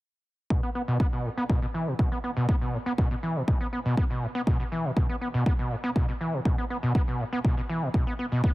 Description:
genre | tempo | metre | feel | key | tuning
acid house | 121 BPM | 4/4 | straight | unclear | A4 = 440 Hz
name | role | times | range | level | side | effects
overdriven acid bass | riff | 0.5-8.5 s | A2 to B3 | -28 LUFS | equal | distortion, tube saturation, wide subtle chorus, sidechain pumping, tape echo
electronic kick drum | drums | 0.5-8.5 s | none | -25 LUFS | equal | none
room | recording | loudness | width
light reverb | heavily compressed radio sound | -25 LUFS | side -18 dB against mid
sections
0.5-8.5 A section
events
filter sweep on acid bass 0.5-8.5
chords
none

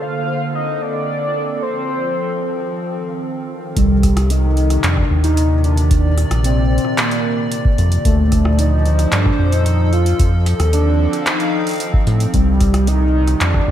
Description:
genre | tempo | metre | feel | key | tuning
IDM | 112 BPM | 4/4 | straight | C dorian | A4 = 440 Hz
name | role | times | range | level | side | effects
warbly nostalgic lead | melody | 0.0-13.7 s | G3 to F5 | -20 LUFS | equal | analog chorus, ping-pong delay
hollow soft pad | sustained chords | 0.0-13.7 s | Bb2 to F5 | -23 LUFS | equal | chorus
flickering grainy texture | texture | 0.0-3.8 s | F4 to F5 | -40 LUFS | right 2 dB | none
round analog bass | bass | 3.8-13.7 s | Bb1 to A2 | -15 LUFS | equal | none
electro analog drum machine | drums | 3.8-13.7 s | handclaps, hi-hat, rim click | -24 LUFS | equal | none
electronic kick drum | drums | 3.8-13.7 s | none | -17 LUFS | equal | none
room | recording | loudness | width
moderate lush hall reverb, RT60 2.4 s | dreamy mix soaked in reverb | -14 LUFS | side -11 dB against mid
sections
0.0-3.8 A section; 3.8-13.7 B section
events
none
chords
0.0 Bbmaj7/D; 1.6 F7; 3.8 Cm9; 8.1 Bbmaj7/D; 10.2 F7; 12.3 Cm9

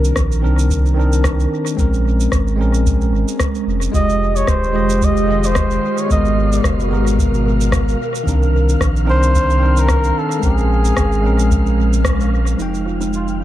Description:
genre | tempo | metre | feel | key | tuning
sunset chillout | 111 BPM | 4/4 | swing 55% on 16ths | F minor | A4 = 440 Hz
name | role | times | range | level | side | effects
bell-like tine electric piano | accompaniment | 0.0-13.4 s | Eb3 to G5 | -20 LUFS | equal | auto-pan, low-pass filter, analog delay, shimmer reverb
ethereal airy pad | sustained chords | 0.0-13.4 s | Cb3 to G5 | -25 LUFS | right 1 dB | ensemble chorus, built-in reverb, shimmer reverb
warm sub bass | bass | 0.0-13.4 s | Eb1 to C2 | -16 LUFS | equal | tube saturation
electronic shaker and rim click | drums | 0.0-13.4 s | none | -26 LUFS | equal | analog delay
electronic kick drum | drums | 0.2-12.2 s | none | -19 LUFS | equal | none
wind-like tuned noise texture | texture | 4.9-13.4 s | F5 to F6 | -31 LUFS | right 1 dB | built-in reverb, shimmer reverb
trumpet with bucket mute | melody | 4.0-13.3 s | F4 to Eb5 | -21 LUFS | equal | analog delay, shimmer reverb
kalimba | arpeggios | 12.6-13.4 s | Eb4 to F4 | -26 LUFS | right 6 dB | low-pass filter, analog delay, shimmer reverb
room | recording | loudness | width
light reverb, digital ambience | echo-heavy mix, lossy compression artefacts | -13 LUFS | side -13 dB against mid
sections
0.0-12.6 A section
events
band accent 12.1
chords
0.0 Cm9; 1.8 Bbm9; 3.9 Fm9; 6.1 Abm9; 8.0 Cm9; 10.4 Bbm9; 12.6 Fm9

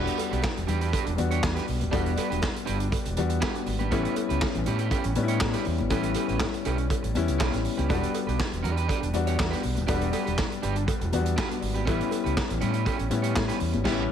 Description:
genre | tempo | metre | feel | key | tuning
disco | 121 BPM | 4/4 | straight | E dorian | A4 = 440 Hz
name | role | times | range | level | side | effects
electric guitar at the edge of break-up | accompaniment | 0.0-14.0 s | C#4 to C#5 | -33 LUFS | right 9 dB | spring reverb
warm concert grand piano | accompaniment | 0.0-14.1 s | F#3 to F#4 | -29 LUFS | left 7 dB | none
overdriven fingered electric bass | bass | 0.0-14.0 s | D#1 to A2 | -28 LUFS | right 1 dB | none
vintage drum kit | drums | 0.1-14.0 s | crash cymbal, handclaps, hi-hat, kick drum, snare drum | -31 LUFS | right 1 dB | none
congas | percussion | 0.2-13.9 s | none | -38 LUFS | left 5 dB | none
cowbell | percussion | 0.2-13.5 s | none | -38 LUFS | right 8 dB | none
room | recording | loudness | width
small room ambience | none | -24 LUFS | side -8 dB against mid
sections
0.0-14.1 A section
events
band accent 13.9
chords
0.0 Em7; 3.9 A9; 7.9 Em7; 11.9 A9

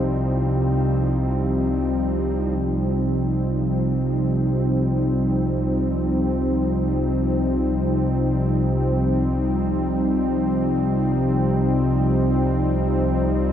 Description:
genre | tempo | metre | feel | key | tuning
dark ambient drone | free time | none | none | unclear | A4 = 439 Hz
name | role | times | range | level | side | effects
sweeping resonant pad | sustained chords | 0.0-13.5 s | F3 to Eb4 | -22 LUFS | right 1 dB | chorus
analog drone | drone | 0.0-13.5 s | C2 to C3 | -22 LUFS | left 1 dB | chorus
room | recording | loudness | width
wet lush hall reverb, RT60 2.7 s | dreamy mix soaked in reverb, cassette tape | -19 LUFS | side -9 dB against mid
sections
0.0-2.6 A section; 2.6-13.5 A section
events
none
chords
0.0 Cm

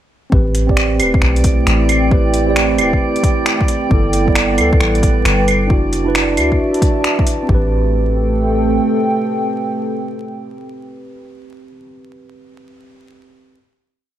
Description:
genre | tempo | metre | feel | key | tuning
future garage | 134 BPM | 4/4 | swing 65% on 16ths | A dorian | A4 = 440 Hz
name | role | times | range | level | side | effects
mellow tine electric piano | accompaniment | 0.3-13.6 s | B3 to D5 | -20 LUFS | right 3 dB | auto-pan, sidechain pumping, dub echo
dark analog pad | sustained chords | 1.1-11.8 s | G3 to A5 | -20 LUFS | equal | chorus, sidechain pumping
soft 808-style bass | bass | 0.3-8.8 s | E1 to D2 | -17 LUFS | equal | sidechain pumping
electronic kick drum | drums | 0.3-7.6 s | none | -15 LUFS | equal | overdrive
drifting glass-harmonics texture | texture | 1.1-7.5 s | D5 | -26 LUFS | right 4 dB | chorus, built-in reverb
deep house drum kit | drums | 0.5-7.4 s | claves, finger snaps, hi-hat | -18 LUFS | equal | overdrive
room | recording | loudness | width
light reverb, digital ambience | vinyl crackle | -12 LUFS | side -11 dB against mid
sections
0.3-7.5 groove; 7.5-11.1 final chord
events
none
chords
0.3 Am7; 3.9 G6; 5.7 Dadd9/F#; 7.5 Am7

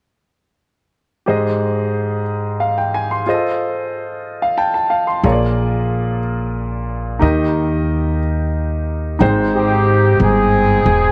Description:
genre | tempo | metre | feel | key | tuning
slow gospel | 60 BPM (dotted quarters) | 6/8 | straight | Ab major | A4 = 440 Hz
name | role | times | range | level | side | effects
clear grand piano | accompaniment | 1.3-11.1 s | Ab2 to C6 | -20 LUFS | equal | none
upright bass | bass | 5.2-11.1 s | Fb1 to Eb2 | -20 LUFS | equal | none
mellow horn section | melody | 9.5-11.1 s | C4 to Ab4 | -16 LUFS | equal | none
room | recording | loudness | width
moderate plate reverb, RT60 2.9 s | none | -17 LUFS | mono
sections
1.3-9.2 A section; 9.2-11.1 B section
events
grand piano fill 4.3-5.2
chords
1.3 Abmaj7; 3.3 F7; 5.2 Bb7; 7.2 Eb; 9.2 Abmaj7

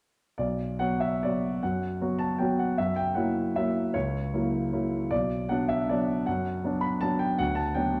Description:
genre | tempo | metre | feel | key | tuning
classical, piano waltz | 144-167 BPM | 3/4 | rubato | B minor | A4 = 439 Hz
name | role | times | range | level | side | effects
warm concert grand piano | solo | 0.4-8.0 s | B1 to B5 | -28 LUFS | equal | none
room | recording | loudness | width
wet recital hall reverb, RT60 1.5 s | dark, warm production | -28 LUFS | mono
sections
0.4-8.0 A section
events
none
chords
0.4 Bm; 2.8 F#7; 5.1 Bm; 7.4 Bm/D

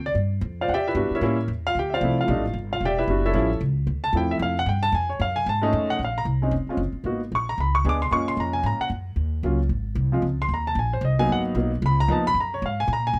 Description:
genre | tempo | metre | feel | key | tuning
jazz, small-group swing and bop | 226 BPM | 4/4 | swing 58% on 8ths | D minor, Bb minor from 6.0 s | A4 = 440 Hz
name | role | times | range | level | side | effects
warm concert grand piano | accompaniment | 0.0-13.2 s | F3 to D6 | -26 LUFS | equal | none
upright bass | bass | 0.0-13.2 s | E1 to Bb2 | -28 LUFS | equal | none
room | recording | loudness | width
light reverb | none | -24 LUFS | mono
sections
0.0-6.0 A section; 6.0-13.2 A section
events
none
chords
0.0 G7(no3); 0.7 Em7; 1.2 A7b9; 1.8 Dm7; 2.3 B7alt; 2.8 Em9; 3.3 A7b13; 3.9 Dm7; 4.9 F7alt; 6.0 Bbm9; 7.1 Abm9; 7.6 Db5; 8.1 Gbmaj9; 9.2 Ebm7; 9.7 Ab; 10.2 Dbsus2; 11.3 Abm7; 11.8 Db13; 12.4 Gbadd9

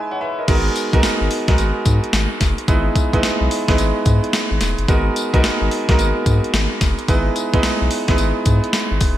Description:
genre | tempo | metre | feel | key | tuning
R&B, new jack swing | 109 BPM | 4/4 | swing 64% on 16ths | G# minor | A4 = 445 Hz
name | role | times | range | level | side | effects
clear concert grand piano | accompaniment | 0.0-9.2 s | G#3 to B5 | -20 LUFS | right 2 dB | none
round analog bass | bass | 0.5-9.1 s | E1 to G#2 | -19 LUFS | equal | none
clean 12-bit digital drum machine | drums | 0.5-9.2 s | crash cymbal, hi-hat, kick drum, snare drum, tambourine | -18 LUFS | left 1 dB | overdrive, vintage 12-bit sampler grit, gated reverb
room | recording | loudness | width
light reverb, digital ambience | bright 1980s-style digital production | -15 LUFS | side -12 dB against mid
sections
0.5-9.2 A section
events
break 0.0-0.5; grand piano fill 0.0-0.5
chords
0.5 G#m9; 2.7 Emaj7/G#; 4.9 G#m9; 7.1 Emaj7/G#

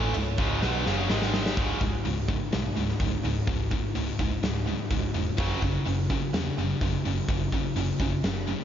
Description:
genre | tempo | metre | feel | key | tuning
hard rock | 126 BPM | 4/4 | straight | unclear | A4 = 440 Hz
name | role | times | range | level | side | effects
overdriven electric guitar | riff | 0.0-8.6 s | C#2 to B3 | -32 LUFS | right 8 dB | spring reverb
scooped high-gain guitar | riff | 0.0-8.6 s | C#2 to B3 | -31 LUFS | left 6 dB | distortion
vintage muted picked electric bass | bass | 0.0-8.5 s | C#1 to E2 | -31 LUFS | equal | none
huge arena drum kit | drums | 0.1-8.6 s | crash cymbal, hi-hat, kick drum, snare drum | -29 LUFS | equal | none
room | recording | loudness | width
light reverb, small room ambience | nothing above 7.5 kHz | -25 LUFS | side -9 dB against mid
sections
0.0-1.6 A section; 1.6-8.6 B section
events
drum fill 0.6-1.6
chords
0.0 C#m; 1.1 G#5; 1.6 C#5; 5.4 F#5

